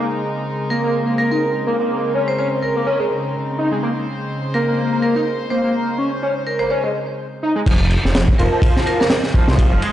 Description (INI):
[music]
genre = breakbeat, breaks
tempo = 125 BPM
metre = 4/4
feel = swing 55% on 16ths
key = unclear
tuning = A4 = 440 Hz
[part]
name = dark chamber string section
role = sustained chords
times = 0.0-7.6 s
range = Db3 to C5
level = -24 LUFS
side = equal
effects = sidechain pumping, low-pass filter
[part]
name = overdriven synth lead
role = riff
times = 0.0-9.9 s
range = F3 to Eb4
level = -20 LUFS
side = left 1 dB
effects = distortion, ensemble chorus, digital delay
[part]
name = vibraphone with medium hard mallets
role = melody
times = 0.7-9.1 s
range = Bb4 to C5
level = -23 LUFS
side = right 2 dB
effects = small speaker sound, vintage 12-bit sampler grit, digital delay
[part]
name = detuned saw bass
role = bass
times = 7.7-9.8 s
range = F1 to C2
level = -17 LUFS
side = equal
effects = tube saturation
[part]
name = crunchy breakbeat drum kit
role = drums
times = 7.7-9.9 s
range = crash cymbal, kick drum, ride cymbal, snare drum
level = -16 LUFS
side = equal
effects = none
[sound]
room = light reverb, small room ambience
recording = played on a big sound system in a bare room, stone room reverb, nothing above 10.4 kHz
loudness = -16 LUFS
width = side -12 dB against mid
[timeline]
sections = 0.0-7.7 A section; 7.7-9.9 B section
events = filter sweep on analog synth lead 0.0-7.7; filter sweep on string section 0.0-7.7; drop 7.7-9.9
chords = 0.0 Bbm11; 7.7 N.C.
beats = 0.47 0.94 1.43 | 1.91 2.38 2.87 3.35 | 3.83 4.30 4.79 5.26 | 5.75 6.22 6.71 7.18 | 7.67 8.14 8.62 9.11 | 9.59